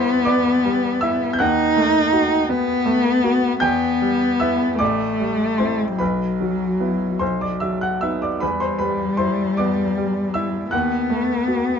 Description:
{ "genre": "classical, romantic duo for cello and grand piano", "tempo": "49-55 BPM (dotted quarters)", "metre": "6/8", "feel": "rubato", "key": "E minor", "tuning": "A4 = 443 Hz", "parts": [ { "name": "warm cello", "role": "melody", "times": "0.0-11.8 s", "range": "F#3 to D#4", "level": "-20 LUFS", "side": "left 2 dB", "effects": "none" }, { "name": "bright baby grand piano", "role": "accompaniment", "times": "0.0-11.8 s", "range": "A1 to G6", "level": "-22 LUFS", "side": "right 2 dB", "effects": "none" } ], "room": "light reverb", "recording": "dark, warm production, nothing above 7.6 kHz", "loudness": "-18 LUFS", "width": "side -7 dB against mid", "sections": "0.0-11.8 A section", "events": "none", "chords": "0.0 Em; 1.4 B7/D#; 3.6 Em; 4.8 Am7; 6.0 Bsus4; 7.2 B; 8.4 Em; 10.7 B7/D#" }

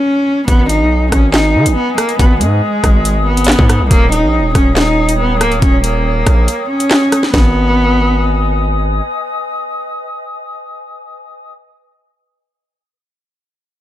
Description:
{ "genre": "hip hop, drill", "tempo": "140 BPM", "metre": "4/4", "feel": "half-time", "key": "G# harmonic minor", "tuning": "A4 = 440 Hz", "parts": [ { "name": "dark cello", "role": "melody", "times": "0.0-8.6 s", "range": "G#3 to D#4", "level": "-15 LUFS", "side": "equal", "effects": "tape echo" }, { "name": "mellow hollow small flute group", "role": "sustained chords", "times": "0.5-11.5 s", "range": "B4 to D#6", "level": "-21 LUFS", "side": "left 1 dB", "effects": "none" }, { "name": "distorted 808-style bass", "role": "bass", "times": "0.5-9.0 s", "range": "C#1 to D#3", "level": "-15 LUFS", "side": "equal", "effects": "distortion" }, { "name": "drill drum kit", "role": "drums", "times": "0.5-7.4 s", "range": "handclaps, hi-hat, kick drum, rim click, snare drum", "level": "-12 LUFS", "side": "equal", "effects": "none" } ], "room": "small room reverb", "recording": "none", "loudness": "-10 LUFS", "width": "side -13 dB against mid", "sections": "0.0-7.3 A section; 7.3-10.8 B section", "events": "kick muted 6.5-7.3", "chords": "0.5 G#m; 3.9 D#7; 7.3 G#m" }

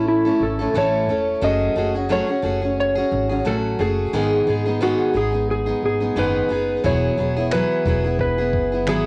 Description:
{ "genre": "acoustic pop", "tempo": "88 BPM", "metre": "4/4", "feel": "swing 55% on 16ths", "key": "unclear", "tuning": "A4 = 440 Hz", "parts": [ { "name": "electric slide guitar", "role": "melody", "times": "0.0-9.1 s", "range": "E4 to D#5", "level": "-24 LUFS", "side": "equal", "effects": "none" }, { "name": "picked steel-string acoustic guitar", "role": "accompaniment", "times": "0.0-9.1 s", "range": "G#2 to A4", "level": "-25 LUFS", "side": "equal", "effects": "cassette tape" }, { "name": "upright bass", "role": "bass", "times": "0.0-9.1 s", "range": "E1 to A1", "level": "-28 LUFS", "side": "equal", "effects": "none" }, { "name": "dusty soul sampler-style drum kit", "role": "drums", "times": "6.8-9.0 s", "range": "finger snaps, kick drum", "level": "-28 LUFS", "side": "equal", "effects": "cassette tape" } ], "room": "moderate studio reverb, RT60 0.5 s", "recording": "home recording on cassette", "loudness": "-20 LUFS", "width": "mono", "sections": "0.0-9.1 A section", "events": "none", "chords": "0.0 A; 1.4 F#madd9; 4.1 G#m; 6.8 Eadd9" }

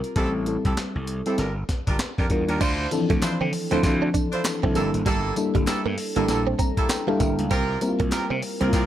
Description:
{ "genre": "R&B, new jack swing", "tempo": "98 BPM", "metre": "4/4", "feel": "swing 60% on 16ths", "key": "G dorian", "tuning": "A4 = 439 Hz", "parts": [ { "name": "mellow FM electric piano", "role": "accompaniment", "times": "0.0-8.9 s", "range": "E3 to Bb5", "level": "-25 LUFS", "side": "left 1 dB", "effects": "chorus" }, { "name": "breakbeat sampler-style drum kit", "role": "drums", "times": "0.0-8.9 s", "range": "crash cymbal, handclaps, hi-hat, kick drum, snare drum, tambourine", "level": "-26 LUFS", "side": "equal", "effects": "none" }, { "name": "mellow horn section", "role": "stabs", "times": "0.2-8.9 s", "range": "Bb3 to C5", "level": "-30 LUFS", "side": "right 3 dB", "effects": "tape echo" }, { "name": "gritty slap bass", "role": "bass", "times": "0.2-8.9 s", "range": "G1 to D3", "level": "-27 LUFS", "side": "equal", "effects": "overdrive" }, { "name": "direct-recorded clean electric guitar", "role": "riff", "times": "2.6-8.8 s", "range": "G3 to D4", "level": "-30 LUFS", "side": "right 8 dB", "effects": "ensemble chorus" }, { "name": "group handclap", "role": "percussion", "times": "3.2-8.3 s", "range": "none", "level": "-39 LUFS", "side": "left 3 dB", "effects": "none" } ], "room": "digital ambience", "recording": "none", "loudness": "-21 LUFS", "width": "side -12 dB against mid", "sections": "0.0-2.6 A section; 2.6-8.9 B section", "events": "FM electric piano fill 6.3-7.5", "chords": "0.2 Am7; 1.4 Gm7; 2.6 Dm9; 4.8 Gm69; 7.5 C7sus4" }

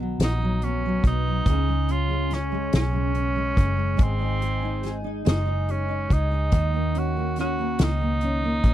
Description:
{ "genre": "six-eight pop ballad", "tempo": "47 BPM (dotted quarters)", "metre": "6/8", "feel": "straight", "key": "Eb minor", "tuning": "A4 = 439 Hz", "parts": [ { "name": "fingerpicked steel-string acoustic guitar", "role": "accompaniment", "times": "0.0-8.7 s", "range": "B2 to Ab4", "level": "-28 LUFS", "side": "equal", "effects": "double-tracked left and right" }, { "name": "vintage muted fingered electric bass", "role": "bass", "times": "0.0-8.7 s", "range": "Gb1 to Eb2", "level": "-25 LUFS", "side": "equal", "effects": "none" }, { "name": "clear tenor saxophone", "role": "melody", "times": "0.2-8.7 s", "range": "C4 to Gb4", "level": "-29 LUFS", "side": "right 2 dB", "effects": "none" }, { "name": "soft-mallet drum kit", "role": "drums", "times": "0.2-8.7 s", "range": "hi-hat, kick drum, snare drum", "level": "-22 LUFS", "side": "equal", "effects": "none" } ], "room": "little or no reverb", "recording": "dry, close 1970s-style studio recording", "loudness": "-21 LUFS", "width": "side -12 dB against mid", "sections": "0.0-8.7 A section", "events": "none", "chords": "0.0 B5; 1.5 Db5; 4.0 Ab; 6.5 Eb5" }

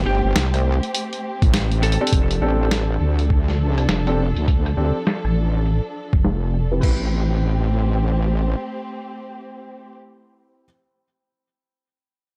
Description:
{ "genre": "glitch hop", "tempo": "102 BPM", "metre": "4/4", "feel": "swing 61% on 16ths", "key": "A minor", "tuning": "A4 = 439 Hz", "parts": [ { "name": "dark studio string section", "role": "sustained chords", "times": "0.0-9.9 s", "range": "F3 to A4", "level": "-31 LUFS", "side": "equal", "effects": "sidechain pumping" }, { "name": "wobble bass", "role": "bass", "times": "0.0-8.6 s", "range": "F1 to D2", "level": "-22 LUFS", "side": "equal", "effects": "chorus, tube saturation" }, { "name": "boom bap sampler-style drum kit", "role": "drums", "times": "0.0-7.0 s", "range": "crash cymbal, hi-hat, rim click, snare drum", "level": "-27 LUFS", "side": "equal", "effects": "low-pass filter on hats, low-pass filter on snare, low-pass filter on cymbals, low-pass filter on room" }, { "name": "lightly driven lead guitar", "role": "melody", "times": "0.1-2.1 s", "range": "G4 to A4", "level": "-32 LUFS", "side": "equal", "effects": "vintage 12-bit sampler grit, delay" }, { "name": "electronic kick drum", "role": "drums", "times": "1.4-7.0 s", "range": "none", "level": "-21 LUFS", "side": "equal", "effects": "none" }, { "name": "dark grand piano", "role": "stabs", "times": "2.0-10.6 s", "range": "C4 to B4", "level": "-29 LUFS", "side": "equal", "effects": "sidechain pumping, low-pass filter, delay" } ], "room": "little or no reverb", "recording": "none", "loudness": "-20 LUFS", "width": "mono", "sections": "0.0-2.1 A section; 2.1-6.8 B section; 6.8-9.2 C section", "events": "drop 0.0-2.1; band accent 1.5; drum fill 1.8; filter sweep on drum 2.1-6.8; filter sweep on wobble bass 2.1-6.8; filter sweep on grand piano 2.1-6.8", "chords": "0.0 Am7; 2.1 F6; 6.8 Am7" }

